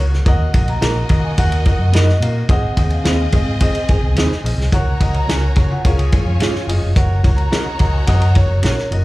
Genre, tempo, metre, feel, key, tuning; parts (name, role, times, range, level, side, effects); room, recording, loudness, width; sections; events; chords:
uptempo 1960s-style soul; 108 BPM; 4/4; straight; F# major; A4 = 440 Hz
warm studio violin section; second line; 0.0-9.0 s; A#3 to A#5; -28 LUFS; equal; slapback echo
warm grand piano; accompaniment; 0.0-9.0 s; E#4 to F#5; -26 LUFS; left 2 dB; slapback echo
vintage muted fingered electric bass; bass; 0.0-9.0 s; E#1 to D#3; -16 LUFS; equal
warm soul drum kit; drums; 0.1-9.0 s; hi-hat, kick drum, ride cymbal, snare drum; -17 LUFS; equal
vibraphone with medium mallets; melody; 0.3-8.9 s; C#5 to A#5; -26 LUFS; right 1 dB; slapback echo
electric guitar at the edge of break-up; stabs; 0.8-8.7 s; A#3 to C#5; -26 LUFS; right 5 dB; analog chorus, slapback echo
electric guitar through a small old amp; riff; 5.7-6.9 s; E#3 to C#5; -30 LUFS; left 4 dB; slapback echo
small room ambience; live gig heard through the venue's PA, club reverb; -13 LUFS; side -19 dB against mid
0.0-9.0 A section
0.3 D#m; 2.5 G#; 4.7 F#/C#; 5.8 C#; 7.0 F#